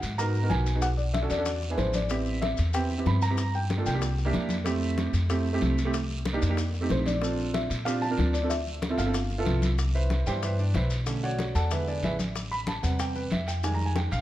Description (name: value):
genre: Afro-Cuban jazz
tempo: 187 BPM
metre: 4/4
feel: straight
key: C major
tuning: A4 = 440 Hz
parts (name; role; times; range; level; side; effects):
- felt-muted upright piano; melody; 0.0-4.5, 6.9-9.4 s; C5 to B5; -32 LUFS; left 1 dB; none
- upright bass; bass; 0.0-14.2 s; G1 to Bb2; -28 LUFS; equal; none
- bongos; percussion; 0.0-14.2 s; none; -40 LUFS; left 6 dB; none
- congas; percussion; 0.0-14.2 s; none; -35 LUFS; left 1 dB; none
- guiro; percussion; 0.0-14.2 s; none; -41 LUFS; right 3 dB; none
- maracas; percussion; 0.0-14.2 s; none; -42 LUFS; left 6 dB; none
- warm concert grand piano; accompaniment; 0.2-14.2 s; C3 to B5; -30 LUFS; right 3 dB; none
room: moderate large studio reverb, RT60 1.4 s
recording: dark, warm production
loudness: -25 LUFS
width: side -14 dB against mid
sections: 0.0-9.8 A section; 9.8-14.2 B section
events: grand piano solo 9.8-14.2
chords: 0.0 Emaj9 (rootless); 0.8 Bm7; 1.5 E7; 2.1 Am9; 3.4 Gm7; 4.0 C9; 4.7 Fmaj7; 5.9 Cm9; 6.6 F7; 7.2 Bbmaj9; 8.5 Dm9; 9.1 G13; 9.8 Cmaj7; 11.1 Bm9; 11.7 E7; 12.4 Am9; 13.6 Fm9